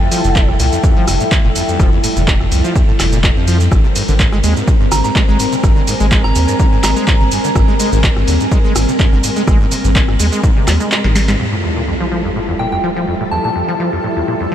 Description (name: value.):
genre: acid house.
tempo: 125 BPM.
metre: 4/4.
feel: swing 53% on 16ths.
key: F major.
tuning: A4 = 441 Hz.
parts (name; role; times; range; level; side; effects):
soft synth bell; melody; 0.0-0.4, 4.9-7.3, 12.6-13.5 s; G5 to Bb5; -23 LUFS; right 1 dB; chorus, phaser, ping-pong delay.
string machine, full ensemble; sustained chords; 0.0-14.5 s; G3 to Bb4; -21 LUFS; equal; ensemble chorus, sidechain pumping.
acid bass, saw; riff; 0.0-14.5 s; E2 to Ab3; -20 LUFS; equal; lush chorus, vintage 12-bit sampler grit, sidechain pumping, ping-pong delay.
deep dark ambient pad; texture; 0.0-14.5 s; F3 to Ab5; -23 LUFS; left 1 dB; chorus, built-in reverb, sidechain pumping.
booming analog drum machine; drums; 0.1-11.4 s; handclaps, hi-hat, rim click, shaker, snare drum; -20 LUFS; right 1 dB; none.
saturated sub bass; bass; 0.2-11.4 s; F1 to F2; -15 LUFS; equal; sidechain pumping.
electronic kick drum; drums; 0.4-10.5 s; none; -13 LUFS; equal; none.
sub drop; sound effects; 11.4-13.3 s; none; -25 LUFS; equal; none.
room: light reverb.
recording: none.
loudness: -11 LUFS.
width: side -10 dB against mid.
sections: 0.0-11.4 A section; 11.4-14.5 B section.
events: drop 0.0-11.4; kick drops out 10.9-11.4; drum fill 11.0-11.4; band accent 11.3; impact 11.4-13.3; filter sweep on acid bass 11.4-14.5.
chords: 0.0 Fmaj9; 3.7 Abmaj9; 11.4 Fmaj9.